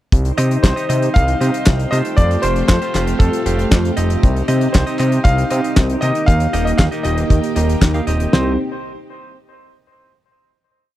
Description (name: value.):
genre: italo disco.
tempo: 117 BPM.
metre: 4/4.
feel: straight.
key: C dorian.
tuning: A4 = 441 Hz.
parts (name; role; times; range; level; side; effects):
string machine, full ensemble; sustained chords; 0.1-8.6 s; A3 to C5; -22 LUFS; equal; ensemble chorus.
fat analog bass; bass; 0.1-8.6 s; Eb1 to C3; -18 LUFS; equal; none.
damped 70s drum kit; drums; 0.1-8.5 s; kick drum, snare drum; -13 LUFS; equal; none.
damped 70s drum kit; drums; 0.1-8.3 s; handclaps, hi-hat, snare drum; -20 LUFS; left 1 dB; none.
direct-recorded clean electric guitar; stabs; 0.4-8.6 s; C3 to F5; -25 LUFS; right 2 dB; none.
warm electric grand piano; melody; 0.6-8.6 s; A4 to F5; -23 LUFS; equal; tape echo.
room: little or no reverb.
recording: dry, close 1970s-style studio recording.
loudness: -13 LUFS.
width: side -14 dB against mid.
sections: 0.1-8.3 chorus; 8.3-10.4 final chord.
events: none.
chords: 0.1 Cm; 2.2 Fadd9; 4.2 Cm; 6.3 Eb; 8.3 Cm.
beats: | 0.13 0.64 1.15 1.67 | 2.18 2.69 3.20 3.72 | 4.23 4.74 5.25 5.77 | 6.28 6.79 7.31 7.82 | 8.33.